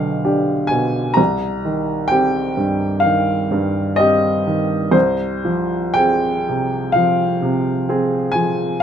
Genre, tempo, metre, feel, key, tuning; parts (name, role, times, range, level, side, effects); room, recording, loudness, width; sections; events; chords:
classical, romantic nocturne for solo piano; 64 BPM; 4/4; rubato; A4 = 440 Hz
warm upright piano; solo; 0.0-8.8 s; B1 to Bb5; -16 LUFS; equal
light reverb; close, detailed microphones; -15 LUFS; side -8 dB against mid
0.0-8.8 A section
0.0 G7/B; 1.2 Cm; 4.9 Fm/C